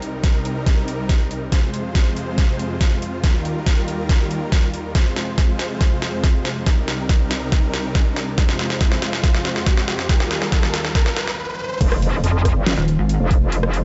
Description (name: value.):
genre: heavy wobble dubstep.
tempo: 140 BPM.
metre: 4/4.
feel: half-time.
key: F minor.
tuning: A4 = 440 Hz.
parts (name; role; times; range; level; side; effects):
supersaw chords; sustained chords; 0.0-13.8 s; C2 to C5; -28 LUFS; equal; sidechain pumping.
dubstep drum kit; drums; 0.0-13.8 s; crash cymbal, hi-hat, rim click, snare drum; -27 LUFS; equal; overdrive, high-pass filter on hats, studio reverb, high-pass filter on snare, high-pass filter on cymbals.
electronic kick drum; drums; 0.2-13.4 s; none; -19 LUFS; equal; overdrive, studio reverb.
riser and impact; sound effects; 7.0-13.5 s; none; -31 LUFS; equal; none.
metallic wobble bass; bass; 11.8-13.8 s; F1 to F2; -21 LUFS; equal; chorus, overdrive.
pulsing pluck wobble bass; bass; 12.8-13.2 s; Eb1 to Ab1; -19 LUFS; equal; chorus, overdrive.
room: light reverb, digital ambience.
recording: dark, warm production, nothing above 7.8 kHz.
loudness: -20 LUFS.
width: mono.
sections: 0.0-11.8 A section; 11.8-13.8 B section.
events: build-up 0.0-11.8; drum fill 0.0-11.4; riser 7.0-11.8; stop 11.4-11.8; drop 11.8-13.8; impact 11.8-13.5.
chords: 0.0 Cm7; 1.5 Fm; 3.2 Ebadd9; 5.0 Fm; 6.7 Cm7; 8.4 Fm; 10.1 Ebadd9; 11.8 F5.